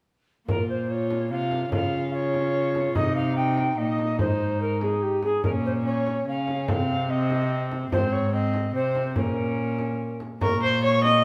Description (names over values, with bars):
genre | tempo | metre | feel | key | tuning
classical, renaissance-style consort dance | 145 BPM | 3/4 | straight | Bb dorian | A4 = 439 Hz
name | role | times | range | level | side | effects
mellow alto recorder | melody | 0.5-11.2 s | G4 to Db6 | -30 LUFS | equal | none
warm viola | second line | 0.5-11.2 s | C4 to Eb5 | -30 LUFS | equal | none
rich cello | bass | 0.5-11.2 s | Ab2 to Db3 | -30 LUFS | equal | none
frame drum | percussion | 0.5-11.2 s | none | -33 LUFS | equal | none
room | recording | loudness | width
wet stone room reverb, RT60 1.0 s | heard from further back in the room | -25 LUFS | mono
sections
0.5-10.4 A section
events
none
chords
0.5 Bbm; 1.7 Db; 3.0 Cm; 4.2 Ab; 5.4 Bbm; 6.7 Cm; 7.9 Ab; 9.2 Bbm